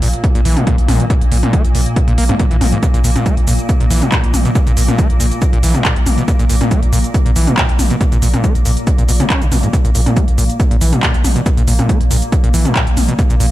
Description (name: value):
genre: driving peak-time techno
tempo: 139 BPM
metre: 4/4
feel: straight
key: unclear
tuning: A4 = 439 Hz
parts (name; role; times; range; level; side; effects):
- overdriven acid bass; riff; 0.0-13.5 s; Ab2 to Db4; -19 LUFS; equal; distortion, cassette tape, sidechain pumping, tape echo
- growling 808-style bass; bass; 0.0-13.5 s; Bb1; -17 LUFS; equal; sidechain pumping, low-pass filter
- swarming drone; drone; 0.0-13.5 s; Bb2 to Bb3; -23 LUFS; left 1 dB; built-in reverb, sidechain pumping
- techno drum kit; drums; 0.0-13.5 s; handclaps, hi-hat, shaker, toms; -19 LUFS; equal; none
- electronic kick drum; drums; 0.2-13.3 s; none; -14 LUFS; equal; none
room: digital ambience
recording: none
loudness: -11 LUFS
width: side -15 dB against mid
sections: 0.0-13.5 A section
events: none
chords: none